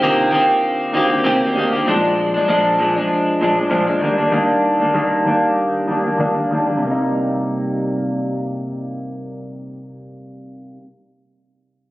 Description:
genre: indie pop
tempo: 97 BPM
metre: 4/4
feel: swing 55% on 16ths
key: C minor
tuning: A4 = 440 Hz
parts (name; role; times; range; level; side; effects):
- clean electric guitar; accompaniment; 0.0-10.8 s; Bb2 to G4; -16 LUFS; equal; lush chorus, warbly pitch drift, low-pass filter
- warm analog keys; accompaniment; 0.0-1.9 s; Bb3 to G4; -24 LUFS; right 2 dB; chorus, cassette tape, low-pass filter
room: moderate plate reverb, RT60 3.3 s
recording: recorded on a phone in the room, studio reverb, compression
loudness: -15 LUFS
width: side -18 dB against mid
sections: 0.0-6.8 A section; 6.8-9.3 B section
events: filter sweep 0.0-6.8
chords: 0.0 Cm7; 1.9 Bb7; 4.0 Ebmaj7; 6.8 Cm7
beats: 0.00 0.62 1.24 | 1.86 2.48 3.10 3.72 | 4.34 4.96 5.58 6.20 | 6.82 7.44 8.06 8.68

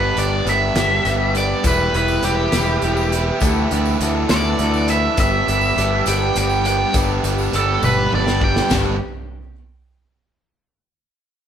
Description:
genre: indie rock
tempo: 68 BPM (dotted quarters)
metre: 6/8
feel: straight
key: G major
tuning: A4 = 440 Hz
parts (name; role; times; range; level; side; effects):
- biting overdriven guitar; melody; 0.0-8.7 s; G4 to G5; -21 LUFS; right 2 dB; spring reverb
- electric guitar through a small old amp; riff; 0.0-9.0 s; E3 to A4; -24 LUFS; left 3 dB; none
- fuzz guitar; riff; 0.0-9.0 s; G2 to G4; -23 LUFS; right 4 dB; distortion
- modern bright picked electric bass; bass; 0.0-9.0 s; E1 to D2; -22 LUFS; left 1 dB; none
- loose indie drum kit; drums; 0.2-8.8 s; hi-hat, kick drum, ride cymbal, snare drum, toms; -24 LUFS; equal; none
- overdriven combo organ; sustained chords; 1.6-9.0 s; D4 to E6; -34 LUFS; left 3 dB; none
- tambourine; percussion; 1.6-9.0 s; none; -36 LUFS; left 6 dB; none
room: moderate studio reverb, RT60 0.8 s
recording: band playing live in one room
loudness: -15 LUFS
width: side -8 dB against mid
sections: 0.0-8.7 A section; 8.7-10.5 B section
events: overdriven electric guitar solo 0.0-8.7; drum fill 7.8-8.7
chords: 0.0 G; 1.6 Em; 3.4 Dsus2; 5.2 G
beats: 0.76 | 1.64 2.52 | 3.41 4.29 | 5.18 6.06 | 6.94 7.83 | 8.71

